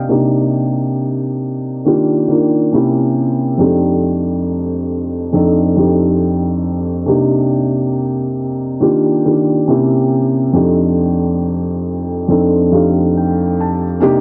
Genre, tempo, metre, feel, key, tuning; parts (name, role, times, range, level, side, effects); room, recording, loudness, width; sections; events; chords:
hip hop; 69 BPM; 4/4; swing 61% on 16ths; A4 = 440 Hz
felt-muted upright piano; solo; 0.0-14.2 s; F2 to A5; -15 LUFS; equal; cassette tape
moderate plate reverb, RT60 2.7 s; worn, warbling old tape, cassette tape, warbly pitch drift, low-pass filter; -15 LUFS; mono
0.1-14.0 A section
filter sweep 0.1-14.0
0.0 Cm9; 1.9 Ebmaj7; 2.7 C7b9; 3.6 F13; 7.1 Cm7; 8.8 Ebmaj7; 9.7 C7b9; 10.6 F13